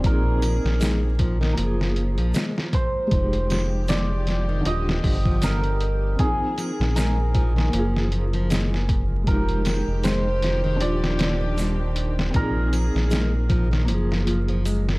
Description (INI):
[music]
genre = trip hop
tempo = 78 BPM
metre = 4/4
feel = swing 56% on 16ths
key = unclear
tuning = A4 = 440 Hz
[part]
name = cimbalom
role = melody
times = 0.0-15.0 s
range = Ab4 to Eb5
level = -30 LUFS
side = right 1 dB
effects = tape echo
[part]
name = felt-muted upright piano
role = accompaniment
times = 0.0-15.0 s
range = D3 to Ab4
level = -30 LUFS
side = equal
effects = tremolo, vintage 12-bit sampler grit
[part]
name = dark studio string section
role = sustained chords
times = 0.0-15.0 s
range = D3 to Ab4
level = -34 LUFS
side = equal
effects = none
[part]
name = flamenco guitar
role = arpeggios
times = 0.0-14.9 s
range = Eb3 to Ab3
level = -30 LUFS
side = left 1 dB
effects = analog delay
[part]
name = round analog bass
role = bass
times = 0.0-15.0 s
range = Eb1 to Bb1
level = -23 LUFS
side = equal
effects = tube saturation
[part]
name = trip hop sampler-style drum kit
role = drums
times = 0.0-15.0 s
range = hi-hat, kick drum, snare drum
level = -25 LUFS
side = equal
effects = overdrive, small room ambience
[part]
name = triangle and egg shaker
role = percussion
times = 0.4-14.8 s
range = none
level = -42 LUFS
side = right 4 dB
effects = none
[sound]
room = small room ambience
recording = dry, gritty hardware recording, vinyl crackle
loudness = -20 LUFS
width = side -23 dB against mid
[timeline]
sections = 0.0-15.0 A section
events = none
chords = 0.0 Bb7sus4; 1.6 Gbmaj7; 3.1 Fm9; 4.7 Ebmaj7; 6.2 Bb7sus4; 7.7 Gbmaj7; 9.3 Fm9; 10.8 Ebmaj7; 12.3 Bb7sus4; 13.9 Gbmaj7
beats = | 0.04 0.81 1.58 2.35 | 3.12 3.89 4.66 5.42 | 6.19 6.96 7.73 8.50 | 9.27 10.04 10.81 11.58 | 12.35 13.12 13.89 14.65